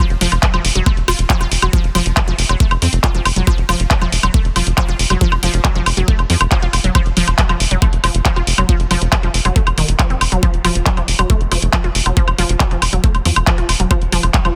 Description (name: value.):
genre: psychedelic trance.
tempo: 138 BPM.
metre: 4/4.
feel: straight.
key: unclear.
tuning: A4 = 439 Hz.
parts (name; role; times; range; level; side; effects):
unison pluck; riff; 0.0-14.5 s; Eb3 to F4; -24 LUFS; equal; sidechain pumping, tape echo.
tight sequencer bass; bass; 0.1-14.5 s; F1 to F2; -19 LUFS; equal; none.
drum and bass drum kit; drums; 0.1-14.5 s; handclaps, hi-hat, woodblock; -20 LUFS; equal; none.
electronic kick drum; drums; 0.4-14.4 s; none; -17 LUFS; equal; none.
room: digital ambience.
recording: dense, heavily limited modern master.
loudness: -15 LUFS.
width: mono.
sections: 0.0-14.6 A section.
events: none.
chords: 0.0 F5.